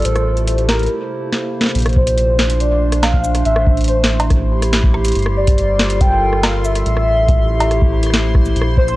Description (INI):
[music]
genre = IDM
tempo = 141 BPM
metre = 4/4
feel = straight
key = unclear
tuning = A4 = 440 Hz
[part]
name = warm velvety synth lead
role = melody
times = 0.0-9.0 s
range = Bb4 to G5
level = -19 LUFS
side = equal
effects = chorus, analog delay
[part]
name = warbly tape-like pad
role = sustained chords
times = 0.0-9.0 s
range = Bb2 to C5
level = -22 LUFS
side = right 1 dB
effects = chorus, built-in reverb
[part]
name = round analog bass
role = bass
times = 0.0-9.0 s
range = G1 to Bb1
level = -17 LUFS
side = equal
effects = none
[part]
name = booming analog drum machine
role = drums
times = 0.0-9.0 s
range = cowbell, hi-hat, rim click, shaker, snare drum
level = -20 LUFS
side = equal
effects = none
[part]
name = bubbling stepped-filter texture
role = texture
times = 0.0-9.0 s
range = A5 to C6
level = -33 LUFS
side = left 3 dB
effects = chorus, built-in reverb, sidechain pumping
[part]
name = electronic kick drum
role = drums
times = 2.0-8.9 s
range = none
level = -15 LUFS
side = equal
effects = none
[sound]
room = digital ambience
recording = dry, gritty hardware recording, cassette tape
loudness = -13 LUFS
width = side -17 dB against mid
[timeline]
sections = 0.0-1.8 A section; 1.8-9.0 B section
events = break 0.9-1.8; drum fill 1.3-1.8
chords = 0.1 Am7; 0.9 C7; 1.8 Bbmaj9; 3.5 Am7; 5.2 Gm9; 6.9 Am7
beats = | 0.05 0.47 0.90 1.33 | 1.75 2.18 2.60 3.03 | 3.45 3.88 4.30 4.73 | 5.16 5.58 6.01 6.43 | 6.86 7.28 7.71 8.13 | 8.56